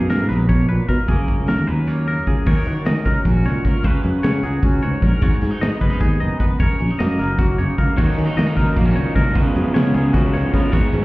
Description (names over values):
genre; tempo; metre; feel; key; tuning
math rock and midwest emo; 305 BPM (eighths); 7/8; straight; F# major; A4 = 440 Hz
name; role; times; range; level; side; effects
twangy electric guitar; accompaniment; 0.0-11.0 s; F#2 to B4; -24 LUFS; right 2 dB; analog chorus
twangy electric guitar; arpeggios; 0.0-11.0 s; F#4 to D#5; -27 LUFS; left 2 dB; none
modern bright fingered electric bass; bass; 0.0-11.0 s; F#1 to D#3; -19 LUFS; equal; none
modern studio drum kit; drums; 0.1-11.0 s; crash cymbal, hi-hat, kick drum, snare drum; -20 LUFS; equal; none
crunchy overdriven guitar; riff; 8.0-11.0 s; G#2 to E#4; -22 LUFS; equal; none
room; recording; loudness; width
little or no reverb; heard muffled through a wall, stone room reverb, EQ; -16 LUFS; side -20 dB against mid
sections
0.0-2.5 A section; 2.5-11.0 B section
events
none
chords
0.0 Bmaj7; 1.1 F#; 2.5 D#m7; 3.8 C#7sus4; 5.2 G#m7; 6.6 F#6; 8.0 D#m7; 9.4 C#7sus4